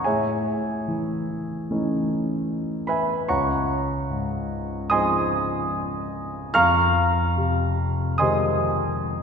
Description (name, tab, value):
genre	classical, impressionist solo piano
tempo	73 BPM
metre	4/4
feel	rubato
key	unclear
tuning	A4 = 438 Hz
part	warm grand piano	solo	0.0-9.2 s	Db2 to F6	-21 LUFS	equal	none
room	wet church reverb, RT60 2.7 s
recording	minimal, uncompressed stereo recording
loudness	-21 LUFS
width	side -6 dB against mid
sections	0.0-9.2 A section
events	none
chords	0.1 Amaj7#11; 3.3 Dbmaj9; 6.6 Fm9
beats	| 0.06 0.88 1.70 2.49 | 3.29 4.11 4.93 5.74 | 6.56 7.37 8.21 9.07